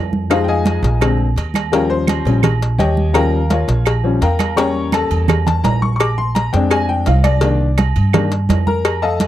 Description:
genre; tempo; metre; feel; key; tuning
Afro-Cuban jazz; 168 BPM; 4/4; straight; unclear; A4 = 440 Hz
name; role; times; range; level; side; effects
upright bass; bass; 0.0-9.3 s; Bb1 to G2; -17 LUFS; right 1 dB; none
congas; percussion; 0.1-9.3 s; none; -20 LUFS; right 3 dB; none
bright upright piano; accompaniment; 0.3-9.3 s; D3 to D6; -18 LUFS; left 4 dB; none
agogo bells and timbales; percussion; 0.3-9.3 s; none; -26 LUFS; right 18 dB; none
claves; percussion; 0.3-9.0 s; none; -25 LUFS; right 28 dB; none
cowbell; percussion; 0.3-9.3 s; none; -22 LUFS; left 3 dB; none
room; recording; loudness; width
little or no reverb; dry, close 1970s-style studio recording; -13 LUFS; side -13 dB against mid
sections
0.0-9.3 A section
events
upright piano solo 0.0-9.3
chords
0.3 Fm7; 1.0 Bb9; 1.7 Eb9; 4.6 Edim7; 6.0 Bb9; 7.4 Cm7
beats
| 0.30 0.66 1.01 1.37 | 1.72 2.08 2.44 2.79 | 3.15 3.50 3.86 4.22 | 4.57 4.93 5.29 5.64 | 6.00 6.36 6.71 7.07 | 7.43 7.79 8.14 8.50 | 8.86 9.21

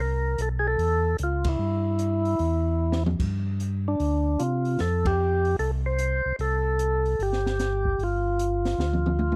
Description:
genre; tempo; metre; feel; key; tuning
soul jazz organ trio; 150 BPM; 4/4; swing 65% on 8ths; C mixolydian; A4 = 440 Hz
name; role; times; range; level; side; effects
percussive tonewheel organ; melody; 0.0-9.4 s; D4 to C5; -28 LUFS; equal; slow rotary speaker
mellow tonewheel organ; bass; 0.0-9.4 s; G1 to C3; -28 LUFS; equal; chorus vibrato, slow rotary speaker
open jazz drum kit; drums; 0.4-9.4 s; crash cymbal, hi-hat, kick drum, ride cymbal, snare drum, toms; -34 LUFS; equal; none
room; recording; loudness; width
small room ambience; dry, close 1970s-style studio recording; -25 LUFS; mono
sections
0.0-9.4 A section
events
band accent 1.4, 5.0; drum fill 2.8-3.2, 8.8-9.4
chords
0.0 C6; 3.2 G5; 4.8 Fsus2; 6.4 C5; 8.0 G5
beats
0.39 0.79 1.19 | 1.59 2.00 2.40 2.80 | 3.20 3.60 4.00 4.40 | 4.80 5.20 5.60 6.00 | 6.40 6.80 7.20 7.60 | 8.00 8.40 8.79 9.19

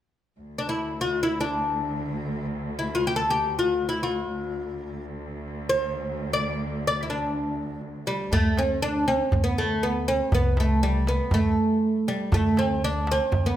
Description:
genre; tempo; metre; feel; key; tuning
Arabic maqam ensemble; free time; none; none; D maqam rast; A4 = 439 Hz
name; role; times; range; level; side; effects
rich studio cello section; drone; 0.4-8.4 s; D2; -33 LUFS; equal; none
oud; melody; 0.6-13.6 s; G3 to D5; -24 LUFS; equal; none
upright bass; bass; 8.3-13.6 s; C2+50c to D2; -26 LUFS; equal; none
darbuka; percussion; 8.3-13.5 s; none; -26 LUFS; right 1 dB; none
room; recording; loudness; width
moderate recital hall reverb, RT60 1.3 s; none; -23 LUFS; side -12 dB against mid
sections
0.4-8.3 A section; 8.3-13.6 B section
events
none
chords
none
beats
free time

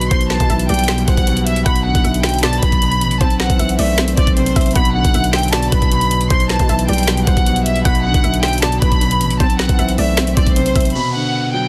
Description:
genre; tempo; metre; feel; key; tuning
hip hop, trap; 155 BPM; 4/4; half-time; B phrygian; A4 = 440 Hz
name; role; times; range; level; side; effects
warm symphonic violin section; melody; 0.0-11.7 s; C5 to C6; -22 LUFS; equal; low-pass filter, delay
soft round pluck; second line; 0.0-10.9 s; B4 to F#5; -31 LUFS; equal; chorus, delay
dark concert grand piano; accompaniment; 0.0-11.7 s; B2 to C4; -23 LUFS; equal; low-pass filter
growling 808-style bass; bass; 0.0-10.9 s; A1 to B2; -21 LUFS; equal; none
trap drum kit; drums; 0.0-10.9 s; finger snaps, hi-hat, kick drum, snare drum; -19 LUFS; equal; none
downlifter; sound effects; 10.9-11.7 s; none; -29 LUFS; equal; none
room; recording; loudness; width
light reverb, digital ambience; dense, heavily limited modern master; -15 LUFS; mono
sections
0.0-10.9 A section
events
none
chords
0.1 Cadd9/B; 1.7 Bm; 3.2 Am/B; 4.8 Bm; 6.3 Cadd9/B; 7.9 Bm; 9.4 Am/B; 10.9 Bm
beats
| 0.11 0.50 0.89 1.27 | 1.66 2.05 2.43 2.82 | 3.21 3.60 3.98 4.37 | 4.76 5.14 5.53 5.92 | 6.30 6.69 7.08 7.47 | 7.85 8.24 8.63 9.01 | 9.40 9.79 10.18 10.56 | 10.95 11.34

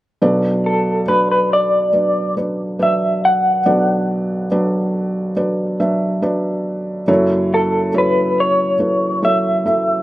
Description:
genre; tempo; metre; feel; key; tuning
folk; 70 BPM; 4/4; straight; B minor; A4 = 445 Hz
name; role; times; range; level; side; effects
felt-muted upright piano; accompaniment; 0.2-10.0 s; F#1 to E5; -17 LUFS; right 1 dB; none
electric guitar through a small old amp; melody; 0.7-10.0 s; A4 to F#5; -16 LUFS; equal; tremolo
room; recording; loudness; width
light reverb; recorded outdoors, with no room sound; -14 LUFS; side -16 dB against mid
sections
0.2-10.0 A section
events
none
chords
0.2 Bm; 7.1 F#m7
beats
| 0.21 1.07 1.93 2.79 | 3.65 4.51 5.37 6.23 | 7.08 7.94 8.80 9.65

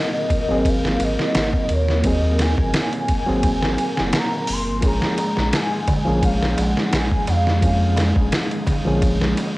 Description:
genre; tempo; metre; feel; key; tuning
trip hop; 86 BPM; 4/4; swing 54% on 16ths; Bb minor; A4 = 440 Hz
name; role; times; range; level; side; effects
pure breathy sine lead; melody; 0.0-8.3 s; Db5 to C6; -26 LUFS; equal; phaser, analog chorus, dub echo, plate reverb
reed electric piano; accompaniment; 0.0-9.6 s; F3 to Ab4; -24 LUFS; equal; tremolo, cassette tape
string machine, cellos; sustained chords; 0.0-9.6 s; Ab3 to Bb4; -26 LUFS; equal; ensemble chorus, cassette tape, plate reverb
trip hop sampler-style drum kit; drums; 0.3-9.6 s; hi-hat, kick drum, ride cymbal, snare drum; -22 LUFS; equal; cassette tape
soft dub sub bass; bass; 0.5-9.3 s; Gb1 to F2; -22 LUFS; equal; none
darbuka; percussion; 4.8-9.5 s; none; -29 LUFS; right 1 dB; none
room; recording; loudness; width
moderate small room reverb, RT60 0.5 s; home recording on cassette; -17 LUFS; side -19 dB against mid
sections
0.0-9.6 A section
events
none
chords
0.0 Ab9; 4.8 Bbm7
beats
0.65 1.35 | 2.05 2.74 3.44 4.14 | 4.84 5.53 6.23 6.93 | 7.63 8.32 9.02

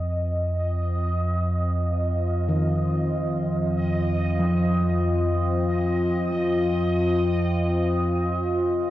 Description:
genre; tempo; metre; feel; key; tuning
dark ambient drone; free time; none; none; unclear; A4 = 441 Hz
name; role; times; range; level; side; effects
deep dark ambient pad; sustained chords; 0.0-8.9 s; C4 to F5; -32 LUFS; left 1 dB; chorus, built-in reverb
analog drone; drone; 0.0-8.9 s; F2 to F3; -23 LUFS; equal; chorus
bubbling stepped-filter texture; texture; 0.0-8.9 s; Eb5; -30 LUFS; right 2 dB; chorus, built-in reverb
gamelan-type bossed gongs; arpeggios; 2.5-8.9 s; Eb3 to F3; -28 LUFS; equal; diffuse ambient delay
room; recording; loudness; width
wet cathedral reverb, RT60 4.8 s; worn, warbling old tape, cassette tape, warbly pitch drift; -21 LUFS; side -14 dB against mid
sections
0.0-8.9 A section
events
fade-in on ambient pad 0.0-8.9; filter sweep on synth drone 0.0-8.9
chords
0.0 F5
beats
free time

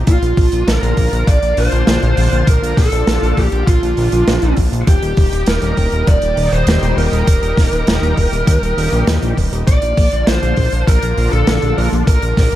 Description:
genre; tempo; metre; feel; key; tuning
synthwave; 100 BPM; 4/4; straight; Bb major; A4 = 440 Hz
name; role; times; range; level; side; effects
analog string pad; sustained chords; 0.0-12.6 s; Bb2 to G4; -23 LUFS; left 1 dB; ensemble chorus, sidechain pumping
fat analog bass; bass; 0.0-12.6 s; Eb1 to Eb2; -16 LUFS; equal; sidechain pumping
bluesy overdriven lead guitar; melody; 0.1-12.6 s; F4 to D5; -19 LUFS; right 1 dB; distortion, tape echo
big rock drum kit; drums; 0.1-12.6 s; hi-hat, snare drum; -21 LUFS; right 1 dB; none
electronic kick drum; drums; 0.1-12.5 s; none; -13 LUFS; equal; overdrive
room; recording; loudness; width
light reverb; dark, warm production; -12 LUFS; side -13 dB against mid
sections
0.0-12.6 A section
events
none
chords
0.1 Bb; 4.9 Eb; 9.7 Bb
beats
| 0.07 0.67 1.27 1.87 | 2.47 3.07 3.67 4.27 | 4.87 5.47 6.07 6.67 | 7.27 7.87 8.47 9.07 | 9.67 10.27 10.87 11.47 | 12.07

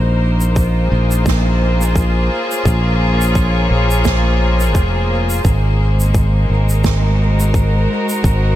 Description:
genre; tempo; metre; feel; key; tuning
ambient dub; 86 BPM; 4/4; swing 57% on 16ths; Bb minor; A4 = 438 Hz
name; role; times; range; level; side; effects
clear studio string section; sustained chords; 0.0-8.6 s; Ab3 to Db5; -19 LUFS; left 1 dB; vintage 12-bit sampler grit
fingered electric bass; bass; 0.0-8.6 s; F1 to Bb1; -14 LUFS; equal; none
shaker and snare drum; drums; 0.4-8.4 s; none; -26 LUFS; right 5 dB; dub echo
electronic kick drum; drums; 0.6-8.4 s; none; -17 LUFS; equal; none
room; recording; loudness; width
light reverb, studio reverb; none; -12 LUFS; side -13 dB against mid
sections
0.0-8.6 A section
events
none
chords
0.0 Bbm7; 5.4 Ab7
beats
0.56 1.26 1.96 | 2.66 3.36 4.05 4.75 | 5.45 6.15 6.84 7.54 | 8.24

